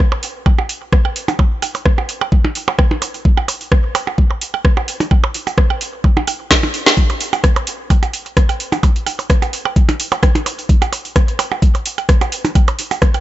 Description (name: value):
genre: techno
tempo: 129 BPM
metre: 4/4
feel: swing 54% on 16ths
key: none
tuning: none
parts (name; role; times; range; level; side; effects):
- electronic kick drum; drums; 0.0-13.1 s; none; -12 LUFS; equal; overdrive
- garage drum kit; drums; 0.0-13.2 s; hi-hat, rim click, snare drum; -19 LUFS; equal; overdrive
- percussion blips; percussion; 0.1-13.2 s; none; -20 LUFS; right 6 dB; tape echo
room: little or no reverb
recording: nothing above 7.9 kHz, faint mains hum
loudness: -13 LUFS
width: side -14 dB against mid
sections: 0.0-7.0 A section; 7.0-13.2 B section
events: drum fill 6.5-7.0; drop 7.0-13.2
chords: none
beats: 0.00 0.46 0.93 | 1.39 1.86 2.32 2.79 | 3.25 3.72 4.18 4.65 | 5.11 5.58 6.04 6.51 | 6.97 7.44 7.90 8.37 | 8.83 9.30 9.76 10.23 | 10.69 11.16 11.62 12.09 | 12.55 13.02